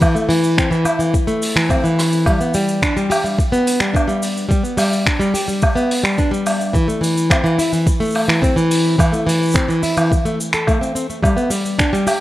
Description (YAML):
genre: folktronica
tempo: 107 BPM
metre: 4/4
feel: straight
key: unclear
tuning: A4 = 440 Hz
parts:
  - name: nylon-string guitar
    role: arpeggios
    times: 0.0-12.2 s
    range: E3 to A4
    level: -17 LUFS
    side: equal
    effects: ping-pong delay
  - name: electronic kick drum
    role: drums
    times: 0.0-11.9 s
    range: none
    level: -18 LUFS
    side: equal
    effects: none
  - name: vintage brush drum kit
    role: drums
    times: 0.0-12.2 s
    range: cabasa, finger snaps, hi-hat, rim click, woodblock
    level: -20 LUFS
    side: equal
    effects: none
room: light reverb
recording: none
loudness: -14 LUFS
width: side -15 dB against mid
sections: 0.0-12.2 A section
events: drum fill 2.0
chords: none